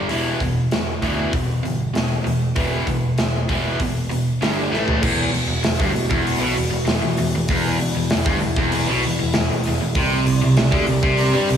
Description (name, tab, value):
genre	hard rock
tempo	97 BPM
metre	4/4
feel	straight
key	E minor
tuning	A4 = 440 Hz
part	cranked stack guitar	riff	0.0-11.6 s	E2 to A3	-21 LUFS	equal	overdrive
part	modern bright picked electric bass	bass	0.0-11.6 s	E1 to G2	-24 LUFS	equal	none
part	big rock drum kit	drums	0.1-11.6 s	crash cymbal, hi-hat, kick drum, snare drum, toms	-23 LUFS	equal	none
part	airy breathy pad	sustained chords	5.0-11.6 s	E3 to D5	-29 LUFS	equal	chorus
room	moderate lush hall reverb, RT60 1.8 s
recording	big arena sound, small room ambience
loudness	-17 LUFS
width	side -8 dB against mid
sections	0.0-5.0 A section; 5.0-11.6 B section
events	drum fill 4.7-5.0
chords	0.1 E5; 4.4 G5; 4.7 A5; 5.0 E5; 10.0 C5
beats	| 0.10 0.72 1.33 1.95 | 2.57 3.18 3.80 4.42 | 5.03 5.65 6.27 6.88 | 7.50 8.11 8.73 9.34 | 9.96 10.57 11.19